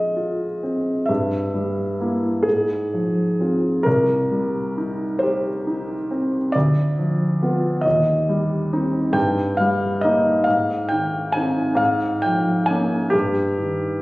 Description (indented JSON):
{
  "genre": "classical, romantic nocturne for solo piano",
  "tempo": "45 BPM (dotted quarters)",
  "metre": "6/8",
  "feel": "uneven beats, rubato",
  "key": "Ab major from 9.2 s",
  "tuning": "A4 = 444 Hz",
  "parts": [
    { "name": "clear concert grand piano", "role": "solo", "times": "0.0-14.0 s", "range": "C2 to Ab5", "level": "-18 LUFS", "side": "equal", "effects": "none" }
  ],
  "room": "wet recital hall reverb, RT60 1.4 s",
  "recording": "recorded on a phone in the room, club reverb",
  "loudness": "-18 LUFS",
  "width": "side -20 dB against mid",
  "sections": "0.0-14.0 A section",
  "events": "none",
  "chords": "0.0 Fm; 1.1 Edim/G; 2.5 Fm/Ab; 3.9 Cm; 6.5 Bdim/D; 7.9 Cm/Eb; 9.2 Eb/G; 10.5 Ab; 11.8 Bbm7/Ab; 13.1 Eb/G",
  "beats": "| 1.09 2.46 | 3.86 5.22 | 6.55 7.85 | 9.16 10.48 | 11.80 13.13"
}